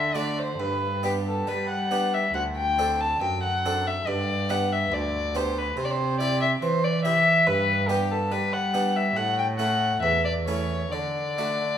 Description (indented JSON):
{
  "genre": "classical, baroque-style sonata movement with continuo",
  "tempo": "70 BPM",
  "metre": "4/4",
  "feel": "rubato",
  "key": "G major",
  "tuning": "A4 = 441 Hz",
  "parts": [
    { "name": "dark violin", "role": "melody", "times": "0.0-11.8 s", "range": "G4 to A5", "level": "-24 LUFS", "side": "left 3 dB", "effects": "none" },
    { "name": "harpsichord", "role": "accompaniment", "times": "0.0-11.8 s", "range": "D2 to A4", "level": "-30 LUFS", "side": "right 2 dB", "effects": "none" },
    { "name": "warm cello", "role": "bass", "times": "0.0-11.8 s", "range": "D2 to G3", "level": "-29 LUFS", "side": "right 2 dB", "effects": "none" }
  ],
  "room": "wet recital hall reverb, RT60 1.8 s",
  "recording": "minimal, uncompressed stereo recording",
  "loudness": "-22 LUFS",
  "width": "side -9 dB against mid",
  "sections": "0.0-11.8 A section",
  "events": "none",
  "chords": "0.0 D; 0.6 G; 2.3 D7; 4.1 G; 5.8 C; 7.5 G; 9.2 A; 10.9 D"
}